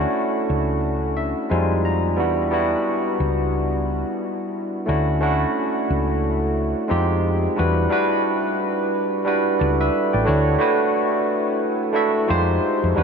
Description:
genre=R&B, neo-soul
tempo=89 BPM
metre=4/4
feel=swing 59% on 16ths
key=E dorian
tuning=A4 = 438 Hz
part: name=barky tine electric piano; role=accompaniment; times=0.0-13.0 s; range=G3 to A#5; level=-20 LUFS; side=equal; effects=wide subtle chorus
part: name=hollow-body short-scale fingered electric bass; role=bass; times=0.0-13.0 s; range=A1 to F2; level=-22 LUFS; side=equal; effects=none
room=wet huge ambient reverb, RT60 8.1 s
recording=dreamy mix soaked in reverb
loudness=-18 LUFS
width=side -6 dB against mid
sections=0.0-7.6 A section; 7.6-13.0 B section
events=tine electric piano fill 0.8-2.2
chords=0.0 Dmaj9; 1.5 Fm7; 2.2 Em7; 4.9 Dmaj9; 6.9 Fm7; 7.6 Em7; 10.3 Dmaj9; 12.3 Fm7

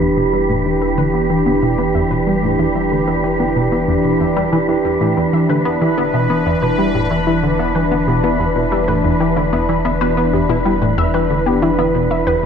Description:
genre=ambient, sequencer-driven space music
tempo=93 BPM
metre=4/4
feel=straight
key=E minor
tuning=A4 = 438 Hz
part: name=sweeping resonant pad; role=sustained chords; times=0.0-12.5 s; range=E3 to B4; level=-17 LUFS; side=equal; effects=chorus
part: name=tight sequenced synth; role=riff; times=0.0-12.5 s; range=E2 to B3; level=-18 LUFS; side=equal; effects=chorus, analog delay
part: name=round analog bass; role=bass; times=0.0-12.5 s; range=E1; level=-26 LUFS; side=left 1 dB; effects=none
part: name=wind-like tuned noise texture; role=texture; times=0.0-12.5 s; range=B4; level=-24 LUFS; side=right 2 dB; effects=built-in reverb
part: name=warbly dusty pluck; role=arpeggios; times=0.2-12.4 s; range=E4 to E5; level=-25 LUFS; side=moving between left 6 dB and right 2 dB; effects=chorus, auto-pan, analog delay
room=wet concert hall reverb, RT60 2.0 s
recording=nothing above 10.3 kHz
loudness=-14 LUFS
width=side -7 dB against mid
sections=0.0-12.5 A section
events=fade-in on synth arpeggio sound 0.0-12.5; filter sweep on synth arpeggio sound 0.0-12.5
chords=0.0 Em7

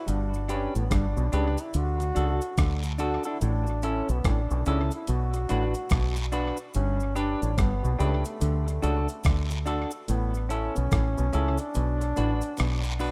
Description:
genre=roots reggae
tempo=72 BPM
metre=4/4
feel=swing 62% on 16ths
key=D major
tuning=A4 = 440 Hz
part: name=bright trombone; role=melody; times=0.0-13.0 s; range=A3 to F#4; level=-36 LUFS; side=equal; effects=dub echo
part: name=mellow clav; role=riff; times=0.1-12.8 s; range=G2 to D3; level=-38 LUFS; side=equal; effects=auto-wah
part: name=deep dub fingered electric bass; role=bass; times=0.1-13.1 s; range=G1 to D2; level=-29 LUFS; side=equal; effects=none
part: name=breakbeat sampler-style drum kit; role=drums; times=0.1-13.1 s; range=hi-hat, kick drum, rim click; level=-31 LUFS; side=equal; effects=none
part: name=cabasa and guiro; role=percussion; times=0.1-13.1 s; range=none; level=-45 LUFS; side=equal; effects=none
part: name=semi-hollow electric guitar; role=accompaniment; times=0.5-13.1 s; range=C#4 to B4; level=-35 LUFS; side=equal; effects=dub echo
room=light reverb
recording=rough home demo mix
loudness=-27 LUFS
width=mono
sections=0.0-13.1 A section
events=kick muted 11.8-13.1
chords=0.1 G; 1.7 D; 3.4 A; 5.1 Bm; 6.7 G; 8.4 D; 10.1 A; 11.8 Bm

